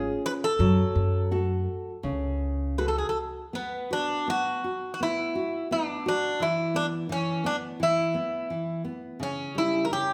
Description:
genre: fado-style ballad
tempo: 85 BPM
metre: 4/4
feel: rubato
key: F# harmonic minor, B minor from 3.5 s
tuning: A4 = 441 Hz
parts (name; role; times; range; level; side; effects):
- Greek bouzouki; melody; 0.0-10.1 s; B3 to B4; -30 LUFS; equal; none
- nylon-string guitar; accompaniment; 0.0-10.1 s; C#3 to A4; -33 LUFS; equal; none
- upright bass; bass; 0.0-3.0 s; C#2 to F#2; -30 LUFS; equal; none
room: moderate recital hall reverb, RT60 1.6 s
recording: recorded in a church or concert hall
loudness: -28 LUFS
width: mono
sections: 0.0-3.5 A section; 3.5-10.1 B section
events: none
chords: 0.0 C#; 0.6 F#madd9; 3.5 B5; 6.4 E5; 9.2 C#dim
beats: | 0.59 1.31 2.04 2.78 | 3.53 4.26 4.98 5.69 | 6.39 7.09 7.79 8.49 | 9.18 9.89

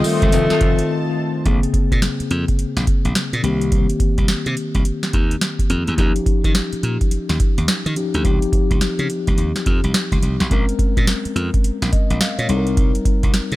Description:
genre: R&B, new jack swing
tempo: 106 BPM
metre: 4/4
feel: swing 63% on 16ths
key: Bb dorian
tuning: A4 = 440 Hz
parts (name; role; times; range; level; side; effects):
- warm alto saxophone; melody; 0.0-1.2 s; A3; -22 LUFS; left 1 dB; digital delay
- mellow tine electric piano; accompaniment; 0.0-13.6 s; Db3 to F5; -22 LUFS; left 3 dB; fast stereo tremolo
- lush unison pad; sustained chords; 0.0-1.4 s; F4 to A5; -28 LUFS; equal; chorus, phaser
- booming analog drum machine; drums; 0.0-13.6 s; hi-hat, kick drum, snare drum, tambourine; -18 LUFS; equal; overdrive
- glassy slap bass; bass; 0.2-13.6 s; F1 to Eb3; -21 LUFS; equal; none
- mellow horn section; stabs; 0.5-0.7 s; C4 to A4; -31 LUFS; right 1 dB; none
room: little or no reverb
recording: none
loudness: -16 LUFS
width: side -17 dB against mid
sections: 0.0-1.5 A section; 1.5-13.6 B section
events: break 0.9-1.5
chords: 0.3 F7; 1.5 Bbm9; 3.4 Cm7; 6.0 Eb9; 8.2 Dbmaj9#11; 10.5 Bbm9; 12.5 Cm7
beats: 0.32 0.89 | 1.46 2.02 2.59 3.15 | 3.72 4.29 4.85 5.42 | 5.98 6.55 7.12 7.68 | 8.25 8.81 9.38 9.95 | 10.51 11.08 11.64 12.21 | 12.78 13.34

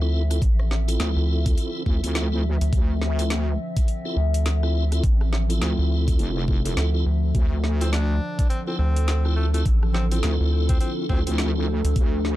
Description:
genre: glitch hop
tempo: 104 BPM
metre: 4/4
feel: swing 60% on 16ths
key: D minor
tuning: A4 = 440 Hz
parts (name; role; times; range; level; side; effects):
- warbly tape-like pad; sustained chords; 0.0-12.4 s; D3 to E5; -31 LUFS; equal; chorus, built-in reverb, phaser, vintage 12-bit sampler grit, sidechain pumping
- tonewheel organ; stabs; 0.0-11.7 s; C4 to A4; -31 LUFS; right 1 dB; overdrive, chorus vibrato, fast rotary speaker, sidechain pumping, digital delay
- rubbery square bass; bass; 0.0-11.9 s; A1 to D2; -21 LUFS; equal; none
- drum and bass drum kit; drums; 0.0-12.4 s; hi-hat, rim click, snare drum; -31 LUFS; equal; overdrive
- electronic kick drum; drums; 0.4-12.1 s; none; -21 LUFS; equal; overdrive
- wobble bass; bass; 1.0-12.4 s; F1 to D2; -23 LUFS; equal; chorus, overdrive
- edgy tenor saxophone; melody; 7.8-11.3 s; A3 to D4; -34 LUFS; equal; digital delay
room: light reverb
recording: dark, warm production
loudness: -20 LUFS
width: side -15 dB against mid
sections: 0.0-12.4 A section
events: none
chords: 0.0 Dm9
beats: | 0.42 1.00 1.57 2.15 | 2.73 3.31 3.88 4.46 | 5.04 5.61 6.19 6.77 | 7.34 7.92 8.50 9.07 | 9.65 10.23 10.80 11.38 | 11.96

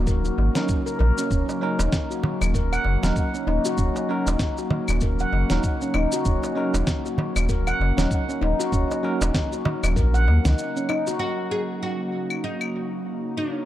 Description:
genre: organic downtempo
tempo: 97 BPM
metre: 4/4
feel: swing 58% on 16ths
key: Eb minor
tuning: A4 = 440 Hz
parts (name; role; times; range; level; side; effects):
- airy breathy pad; sustained chords; 0.0-13.7 s; Db3 to Gb4; -30 LUFS; equal; chorus, sidechain pumping
- round analog bass; bass; 0.0-10.5 s; Eb1 to Eb2; -22 LUFS; equal; sidechain pumping
- handpan; arpeggios; 0.1-11.2 s; Db4 to Gb5; -27 LUFS; left 1 dB; tape echo
- electronic kick drum; drums; 0.1-10.1 s; none; -25 LUFS; equal; none
- electronic shaker, snare drum and claves; drums; 0.1-12.7 s; none; -29 LUFS; left 1 dB; dub echo
- darbuka; percussion; 0.4-11.0 s; none; -31 LUFS; right 2 dB; dub echo
- bell-like tine electric piano; accompaniment; 0.5-13.7 s; Gb3 to Bb4; -32 LUFS; right 2 dB; medium stereo tremolo, sidechain pumping, dub echo
- oud; melody; 11.2-13.7 s; Db4 to Ab4; -29 LUFS; equal; vintage 12-bit sampler grit, analog delay
room: light reverb, small room ambience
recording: echo-heavy mix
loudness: -21 LUFS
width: side -13 dB against mid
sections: 0.0-11.2 A section; 11.2-13.7 B section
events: break 10.6-11.2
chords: 0.0 Ebm7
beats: 0.07 0.69 | 1.31 1.92 2.54 3.16 | 3.78 4.40 5.02 5.63 | 6.25 6.87 7.49 8.11 | 8.73 9.35 9.96 10.58 | 11.20 11.82 12.44 13.06

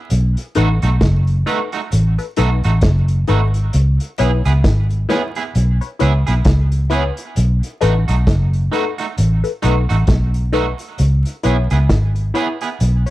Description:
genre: roots reggae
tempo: 66 BPM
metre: 4/4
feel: swing 58% on 16ths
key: unclear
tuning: A4 = 436 Hz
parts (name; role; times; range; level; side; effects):
- vintage muted fingered electric bass; bass; 0.1-13.0 s; F#1 to C#2; -14 LUFS; equal; none
- vintage drum kit; drums; 0.1-13.1 s; hi-hat, kick drum, snare drum; -20 LUFS; equal; none
- electric guitar at the edge of break-up; accompaniment; 0.6-12.7 s; A3 to G#4; -24 LUFS; right 6 dB; spring reverb, tape echo
- filtered dub chord stab; stabs; 0.6-13.1 s; D#4 to C#5; -20 LUFS; left 5 dB; phaser
room: little or no reverb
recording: vinyl crackle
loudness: -14 LUFS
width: side -16 dB against mid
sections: 0.0-13.1 A section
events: none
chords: 0.1 B7; 3.7 C#m7; 7.4 B7; 11.0 C#m7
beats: | 0.10 1.01 1.92 2.82 | 3.73 4.64 5.54 6.45 | 7.36 8.27 9.17 10.08 | 10.99 11.89 12.80

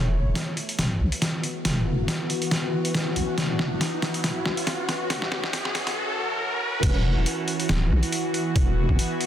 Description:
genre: deep dubstep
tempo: 139 BPM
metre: 4/4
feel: swing 55% on 16ths, half-time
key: unclear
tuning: A4 = 439 Hz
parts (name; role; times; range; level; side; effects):
- bowed-like drone; sustained chords; 0.0-9.3 s; E3 to F#4; -29 LUFS; equal; built-in reverb
- deep soft wobble bass; bass; 0.0-9.0 s; D1 to B1; -24 LUFS; equal; chorus
- riser; sound effects; 0.0-6.8 s; none; -33 LUFS; equal; none
- electronic kick drum; drums; 0.4-9.0 s; none; -25 LUFS; equal; high-pass filter on kick
- trip hop sampler-style drum kit; drums; 0.4-9.3 s; crash cymbal, hi-hat, snare drum; -27 LUFS; equal; none
room: light reverb, digital ambience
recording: dense, heavily limited modern master, high-pass filter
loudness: -22 LUFS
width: side -10 dB against mid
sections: 0.0-6.8 A section; 6.8-9.3 B section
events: build-up 0.0-6.8; drum fill 0.0-6.0; riser 0.0-6.8; filter sweep on synth drone 0.0-6.8; filter sweep 0.0-6.8; drop 6.8-9.3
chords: 0.0 E5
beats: 0.36 0.79 1.22 | 1.65 2.08 2.51 2.95 | 3.38 3.81 4.24 4.67 | 5.10 5.54 5.97 6.40 | 6.83 7.26 7.69 8.12 | 8.56 8.99

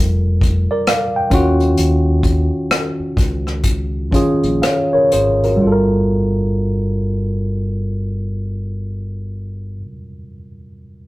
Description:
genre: R&B, neo-soul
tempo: 59-68 BPM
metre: 4/4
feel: swing 61% on 16ths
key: unclear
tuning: A4 = 440 Hz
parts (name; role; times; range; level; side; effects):
- tine electric piano; accompaniment; 0.0-11.1 s; Eb3 to G5; -18 LUFS; equal; low-pass filter
- deep dub fingered electric bass; bass; 0.0-9.8 s; F1 to Eb2; -19 LUFS; equal; none
- unplugged drum kit; drums; 0.4-5.6 s; hi-hat, kick drum, rim click; -18 LUFS; equal; none
room: moderate studio reverb, RT60 0.5 s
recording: rough rehearsal-room recording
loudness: -14 LUFS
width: side -18 dB against mid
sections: 0.0-5.6 A section; 5.6-9.7 B section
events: slowing down 0.0-5.6; filter sweep on tine electric piano 0.0-5.6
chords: 0.0 Gm9; 1.3 Ebm9; 5.6 Gm9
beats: 0.86 | 1.77 2.70 3.64 4.62 | 5.62 6.65 7.67 8.69

